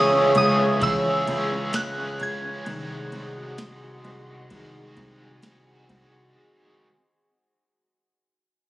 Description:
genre	dream pop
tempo	65 BPM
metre	4/4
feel	straight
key	unclear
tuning	A4 = 440 Hz
part	soft synth bell	melody	0.0-5.9 s	D#6 to G#6	-25 LUFS	equal	chorus, tape echo
part	overdriven electric guitar	accompaniment	0.0-6.9 s	B#2 to G#4	-32 LUFS	right 1 dB	tremolo, wide subtle chorus
part	warbly tape-like pad	sustained chords	0.0-6.3 s	G#4 to C#6	-25 LUFS	right 1 dB	chorus, built-in reverb, phaser
part	mellow electric guitar	arpeggios	0.0-7.0 s	D#3 to F#4	-30 LUFS	left 2 dB	wide subtle chorus, tape echo
part	dark baby grand piano	bass	0.0-6.3 s	B#1 to C#2	-30 LUFS	right 1 dB	none
part	soft vintage rhythm box	drums	0.3-6.1 s	kick drum, ride cymbal, snare drum, tambourine	-35 LUFS	equal	none
part	glockenspiel with soft plastic mallets	texture	2.6-4.2 s	F#6	-53 LUFS	right 2 dB	none
room	light reverb, digital ambience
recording	recorded on a phone in the room, studio reverb, compression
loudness	-21 LUFS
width	side -17 dB against mid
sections	0.0-6.4 A section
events	fade-out 0.0-6.4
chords	0.0 C#m; 2.7 G#7/B#

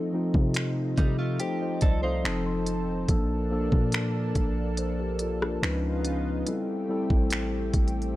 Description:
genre	contemporary R&B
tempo	71 BPM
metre	4/4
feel	straight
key	unclear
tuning	A4 = 440 Hz
part	mellow tine electric piano	accompaniment	0.0-8.2 s	F3 to C6	-29 LUFS	left 1 dB	none
part	lush unison pad	sustained chords	0.0-8.2 s	C#3 to A4	-35 LUFS	equal	chorus, sidechain pumping
part	warm 808-style bass	bass	0.3-8.1 s	F1 to C3	-30 LUFS	equal	none
part	smooth R&B drum kit	drums	0.3-8.1 s	finger snaps, hi-hat, kick drum, rim click	-26 LUFS	equal	vintage 12-bit sampler grit
part	direct-recorded clean electric guitar	arpeggios	1.0-2.4 s	G3 to C5	-34 LUFS	right 2 dB	analog chorus, tape echo
room	little or no reverb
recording	dry, gritty hardware recording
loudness	-24 LUFS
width	side -16 dB against mid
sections	0.0-8.2 A section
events	tine electric piano fill 1.4-3.1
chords	0.0 F7/C; 2.2 F7; 3.1 Bbmaj7; 5.6 C#9; 6.5 Am7

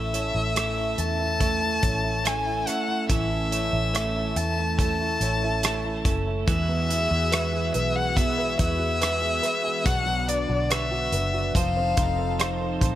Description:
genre	pop ballad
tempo	71 BPM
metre	4/4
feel	straight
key	A major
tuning	A4 = 440 Hz
part	warm violin	melody	0.0-12.8 s	D5 to A5	-27 LUFS	left 3 dB	none
part	warm concert grand piano	accompaniment	0.0-13.0 s	B2 to C#5	-31 LUFS	right 2 dB	none
part	airy breathy pad	sustained chords	0.0-13.0 s	D3 to A4	-35 LUFS	equal	chorus
part	twelve-string electric guitar	arpeggios	0.0-13.0 s	E2 to C#5	-34 LUFS	right 6 dB	analog chorus, digital delay
part	vintage muted fingered electric bass	bass	0.0-13.0 s	F1 to E2	-28 LUFS	equal	none
part	modern studio drum kit	drums	0.1-13.0 s	hi-hat, kick drum, rim click	-26 LUFS	equal	none
room	small room ambience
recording	none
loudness	-22 LUFS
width	side -13 dB against mid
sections	0.0-13.0 A section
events	none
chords	0.0 A; 6.5 Eadd9; 9.9 Bmadd9; 11.5 F7

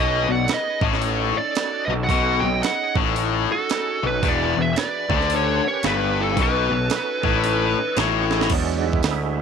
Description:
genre	blues rock power trio and southern rock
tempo	112 BPM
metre	4/4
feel	swing 62% on 8ths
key	unclear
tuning	A4 = 442 Hz
part	fuzz lead guitar	melody	0.0-8.0 s	A4 to G5	-24 LUFS	right 1 dB	distortion, tape echo
part	bluesy overdriven lead guitar	second line	0.0-8.0 s	E4 to D#5	-32 LUFS	right 15 dB	distortion
part	overdriven tonewheel organ	sustained chords	0.0-9.4 s	F#3 to B4	-30 LUFS	right 15 dB	slow rotary speaker, chorus vibrato
part	tight distorted guitar	riff	0.0-8.5 s	E2 to D3	-23 LUFS	left 14 dB	distortion
part	fuzz picked electric bass	bass	0.0-9.4 s	E1 to E2	-25 LUFS	right 1 dB	overdrive
part	breakbeat sampler-style drum kit	drums	0.5-9.2 s	crash cymbal, hi-hat, kick drum, snare drum	-24 LUFS	right 4 dB	none
room	digital ambience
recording	1960s-style stereo with parts hard left and right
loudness	-19 LUFS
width	side -6 dB against mid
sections	0.0-8.5 A section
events	drum fill 8.2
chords	0.0 B7; 4.2 E7; 5.3 A9; 6.4 B7; 8.5 E7

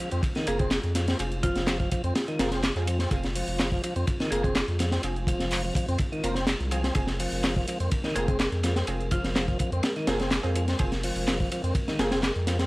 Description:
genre	breakbeat, breaks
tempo	125 BPM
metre	4/4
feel	straight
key	F minor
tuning	A4 = 442 Hz
part	dark analog pad	sustained chords	0.0-12.7 s	Ab3 to Bb4	-38 LUFS	equal	chorus, sidechain pumping
part	tonewheel organ	riff	0.0-12.7 s	Eb3 to C4	-32 LUFS	equal	overdrive, fast rotary speaker, analog delay
part	saturated sub bass	bass	0.1-12.7 s	F1 to F2	-30 LUFS	equal	tube saturation
part	punchy analog drum machine	drums	0.1-12.7 s	handclaps, hi-hat	-35 LUFS	equal	none
part	crunchy breakbeat drum kit	drums	0.2-12.7 s	hi-hat, kick drum, ride cymbal, snare drum	-28 LUFS	equal	none
part	buzzing marimba with hard mallets	melody	0.5-4.5, 8.2-12.2 s	F4 to Ab4	-35 LUFS	equal	AM radio sound, analog delay
part	orchestra-hit-like synth stab	stabs	0.5-12.1 s	C4 to C5	-36 LUFS	right 2 dB	built-in reverb, analog delay
room	light reverb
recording	dry, gritty hardware recording, vinyl crackle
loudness	-24 LUFS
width	side -21 dB against mid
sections	0.0-12.7 A section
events	none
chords	0.0 Fm

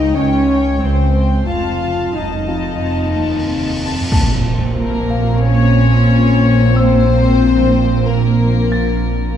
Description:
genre	cinematic, suspense film score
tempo	91 BPM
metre	4/4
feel	straight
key	Bb hungarian minor from 4.1 s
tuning	A4 = 440 Hz
part	warm studio violin section	melody	0.0-9.4 s	Bb4 to A5	-22 LUFS	left 6 dB	none
part	warm symphonic violin section	second line	0.0-9.4 s	Bb3 to F5	-21 LUFS	left 4 dB	none
part	dark studio viola section	accompaniment	0.0-9.4 s	Bb3 to F4	-20 LUFS	left 2 dB	none
part	rich chamber double bass section	bass	0.0-9.4 s	F1 to C#2	-18 LUFS	right 2 dB	none
part	warm studio cello section	bass	0.0-9.4 s	C#2 to Bb2	-19 LUFS	right 2 dB	none
part	organ-like drone	drone	0.0-9.4 s	Bb1 to F2	-21 LUFS	equal	ensemble chorus, built-in reverb
part	clear grand piano	texture	0.0-9.4 s	F4 to A6	-31 LUFS	left 2 dB	none
part	cymbal swell and impact	sound effects	3.4-6.8 s	none	-21 LUFS	equal	none
room	wet scoring stage reverb, RT60 2.0 s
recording	dark, warm production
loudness	-12 LUFS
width	side -9 dB against mid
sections	0.0-4.1 A section; 4.1-9.4 B section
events	cymbal swell 3.4-4.1; impact 4.1-6.8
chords	0.0 Cm/C#; 1.5 F7; 4.1 Bbmadd9

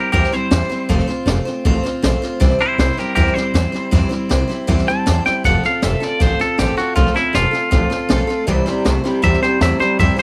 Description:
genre	rockabilly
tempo	158 BPM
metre	4/4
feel	straight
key	C mixolydian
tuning	A4 = 440 Hz
part	twangy electric guitar	melody	0.0-10.2 s	E4 to A5	-21 LUFS	equal	tape echo
part	picked steel-string acoustic guitar	accompaniment	0.0-10.2 s	C3 to C5	-23 LUFS	equal	none
part	upright bass	bass	0.1-10.2 s	F1 to F2	-21 LUFS	equal	none
part	jazz brush drum kit	drums	0.1-10.2 s	hi-hat, kick drum, snare drum, splash cymbal	-23 LUFS	equal	none
part	electric guitar through a small old amp	riff	8.5-10.2 s	C3 to A3	-23 LUFS	equal	analog chorus
room	studio reverb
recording	none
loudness	-17 LUFS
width	mono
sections	0.0-10.2 A section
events	clean electric guitar solo 0.0-10.2; drum fill 5.3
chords	0.0 C; 0.9 F; 2.4 C; 5.4 F; 8.5 C

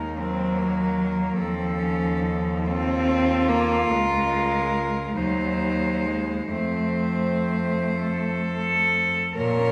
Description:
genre	classical, lyrical piece for cello ensemble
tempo	39-51 BPM (dotted quarters)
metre	6/8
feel	rubato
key	unclear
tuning	A4 = 442 Hz
part	clear cello	melody	0.0-9.7 s	A4 to Db5	-33 LUFS	equal	none
part	rich cello	second line	0.0-9.7 s	Bb3 to Bb4	-29 LUFS	equal	none
part	dark cello	accompaniment	0.0-9.7 s	F3 to Db4	-28 LUFS	equal	none
part	warm cello	bass	0.0-9.7 s	Db2 to Bb2	-31 LUFS	equal	none
room	wet recital hall reverb, RT60 1.4 s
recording	heard from further back in the room, faint mains hum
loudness	-24 LUFS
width	mono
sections	0.0-9.4 A section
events	none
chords	0.0 Ebm; 1.4 F7/Eb; 3.9 Bbm/Db; 5.2 Cdim/Eb; 6.5 F

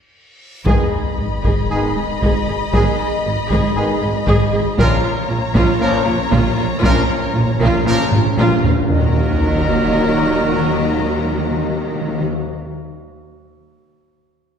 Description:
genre	cinematic, epic orchestral film score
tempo	116 BPM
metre	4/4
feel	straight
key	Eb minor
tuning	A4 = 436 Hz
part	reverse cymbal and sub drop	sound effects	0.4-2.7, 9.1-11.0 s	none	-27 LUFS	left 1 dB	none
part	warm symphonic violin section	melody	0.7-12.2 s	Bb5 to Cb6	-28 LUFS	left 5 dB	none
part	warm studio violin section	second line	0.7-12.2 s	Db5 to Eb5	-27 LUFS	left 2 dB	none
part	rich studio viola section	accompaniment	0.7-12.2 s	F4 to Ab4	-24 LUFS	right 1 dB	none
part	bright trombone section	sustained chords	0.7-12.2 s	Bb2 to Ab3	-28 LUFS	right 1 dB	none
part	dark French horn section	sustained chords	0.7-12.2 s	Bb3 to Eb4	-26 LUFS	left 2 dB	none
part	clear trumpet	stabs	0.7-12.2 s	Ab4 to Bb4	-27 LUFS	right 1 dB	none
part	clear symphonic double bass section	bass	0.7-12.2 s	Ab1 to Eb2	-22 LUFS	right 2 dB	none
part	rich symphonic cello section	bass	0.7-12.2 s	Ab2 to Eb3	-22 LUFS	right 1 dB	none
part	solo taiko drums	drums	0.7-9.0 s	none	-20 LUFS	equal	none
part	timpani	percussion	4.8-12.3 s	Bb2 to Eb3	-22 LUFS	equal	none
room	wet scoring stage reverb, RT60 1.8 s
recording	heard from further back in the room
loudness	-14 LUFS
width	side -7 dB against mid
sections	0.7-8.9 A section; 8.9-13.0 B section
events	break 0.0-0.7; drum fill 0.0-0.7, 8.1-8.9; reverse cymbal 0.4; impact 0.7-2.7, 8.9-11.0; timpani fill 4.8-8.9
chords	0.0 N.C.; 0.7 Abm; 4.8 Bbm; 8.9 Ebm

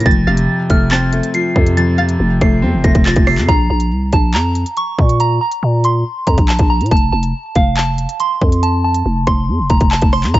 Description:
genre	hip hop, drill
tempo	140 BPM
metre	4/4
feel	half-time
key	unclear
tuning	A4 = 440 Hz
part	soft synth bell	melody	0.0-10.4 s	F5 to C7	-18 LUFS	right 2 dB	chorus, phaser, low-pass filter
part	bright grand piano	accompaniment	0.0-3.5 s	F2 to C4	-17 LUFS	left 1 dB	low-pass filter
part	growling 808-style bass	bass	0.0-10.4 s	F1 to Bb2	-15 LUFS	equal	none
part	drill drum kit	drums	0.0-10.4 s	handclaps, hi-hat, kick drum, rim click	-14 LUFS	equal	none
part	string-like resonator pluck	second line	0.3-3.4 s	F5 to A5	-26 LUFS	left 5 dB	chorus, digital delay
room	little or no reverb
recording	dark, warm production, vinyl crackle, nothing above 7.8 kHz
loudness	-12 LUFS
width	side -16 dB against mid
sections	0.0-3.5 A section; 3.5-10.4 B section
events	none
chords	0.1 F; 3.5 N.C.; 6.9 F

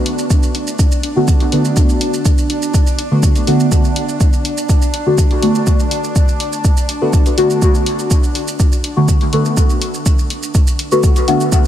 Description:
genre	dub techno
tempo	123 BPM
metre	4/4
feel	straight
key	B minor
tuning	A4 = 441 Hz
part	deep mellow chord stab	stabs	0.0-11.7 s	D3 to F#4	-17 LUFS	equal	chorus, phaser, sidechain pumping, dub echo
part	bubbling stepped-filter texture	texture	0.0-11.7 s	D4	-23 LUFS	equal	chorus, built-in reverb, sidechain pumping
part	electronic hi-hat and shaker	drums	0.1-11.7 s	none	-24 LUFS	right 2 dB	none
part	electronic kick drum	drums	0.3-11.6 s	none	-13 LUFS	equal	none
room	moderate huge ambient reverb, RT60 5.2 s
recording	dreamy mix soaked in reverb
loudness	-12 LUFS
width	side -11 dB against mid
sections	0.0-11.7 A section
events	none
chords	0.0 Bm7

